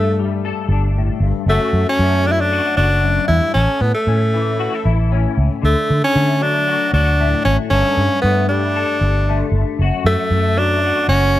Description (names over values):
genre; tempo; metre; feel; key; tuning
highlife guitar band; 115 BPM; 4/4; swing 53% on 16ths; D major; A4 = 440 Hz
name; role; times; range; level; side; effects
edgy tenor saxophone; melody; 0.0-11.4 s; A3 to E4; -17 LUFS; equal; none
clean electric guitar; accompaniment; 0.0-11.4 s; F#2 to A4; -23 LUFS; left 7 dB; ensemble chorus
vintage muted fingered electric bass; bass; 0.0-11.4 s; F#1 to D3; -17 LUFS; equal; none
room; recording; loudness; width
small room ambience; dry, close 1970s-style studio recording; -14 LUFS; side -14 dB against mid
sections
0.0-11.4 A section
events
none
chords
0.0 Gsus2; 1.5 D/F#; 3.6 A; 5.6 D; 7.7 Gsus2; 9.8 D/F#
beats
0.43 0.95 | 1.47 1.99 2.51 3.03 | 3.55 4.07 4.59 5.11 | 5.63 6.15 6.67 7.19 | 7.71 8.23 8.75 9.27 | 9.79 10.31 10.83 11.35